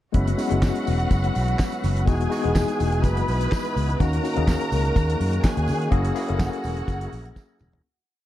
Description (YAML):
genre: disco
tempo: 125 BPM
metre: 4/4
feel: straight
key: unclear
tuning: A4 = 440 Hz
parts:
  - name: clear studio string section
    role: second line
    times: 0.1-7.8 s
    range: F#4 to B5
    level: -30 LUFS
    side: right 1 dB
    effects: slapback echo
  - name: tine electric piano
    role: accompaniment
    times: 0.1-7.9 s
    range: G#3 to A#4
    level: -28 LUFS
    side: left 5 dB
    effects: overdrive, fast stereo tremolo
  - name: tonewheel organ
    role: sustained chords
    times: 0.1-7.8 s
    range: D#3 to B4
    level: -32 LUFS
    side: right 1 dB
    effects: overdrive, fast rotary speaker
  - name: fingered electric bass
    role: bass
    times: 0.1-7.8 s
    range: E1 to D#3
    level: -24 LUFS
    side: equal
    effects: none
  - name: damped 70s drum kit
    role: drums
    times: 0.1-7.8 s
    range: handclaps, hi-hat, kick drum, snare drum, toms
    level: -24 LUFS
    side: equal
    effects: none
  - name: tambourine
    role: percussion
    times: 0.4-7.7 s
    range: none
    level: -45 LUFS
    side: right 10 dB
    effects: none
room: small room ambience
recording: dark, warm production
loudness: -20 LUFS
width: side -13 dB against mid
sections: 0.1-7.8 pre-chorus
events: fade-out 5.9-7.8; drum fill 7.4-7.8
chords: 0.1 F#7sus4; 2.1 Emaj9; 4.0 D#m7; 5.9 F#9